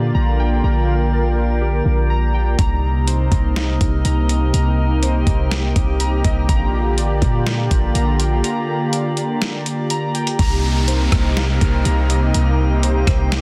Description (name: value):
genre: hip hop, atmospheric cloud-rap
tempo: 123 BPM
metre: 4/4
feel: half-time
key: C minor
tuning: A4 = 443 Hz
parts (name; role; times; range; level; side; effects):
- warm analog pad; sustained chords; 0.0-13.4 s; C3 to Bb4; -24 LUFS; equal; chorus, sidechain pumping
- warbly lo-fi synth keys; arpeggios; 0.0-13.4 s; Eb4 to Bb5; -29 LUFS; equal; chorus, low-pass filter, digital delay
- warm 808-style bass; bass; 0.0-13.4 s; A1 to Bb2; -20 LUFS; equal; none
- drifting glass-harmonics texture; texture; 0.0-13.4 s; Bb3 to Eb5; -34 LUFS; equal; chorus, built-in reverb
- dusty soul sampler-style drum kit; drums; 2.6-13.4 s; hi-hat, kick drum, rim click, snare drum; -22 LUFS; equal; overdrive
- downlifter; sound effects; 10.4-13.4 s; none; -31 LUFS; equal; none
room: little or no reverb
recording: dense, heavily limited modern master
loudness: -18 LUFS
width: mono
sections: 0.0-10.4 A section; 10.4-13.4 B section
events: break 8.4-10.4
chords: 0.0 Bb6; 2.6 Cm7; 6.5 Bb6; 10.4 Cm7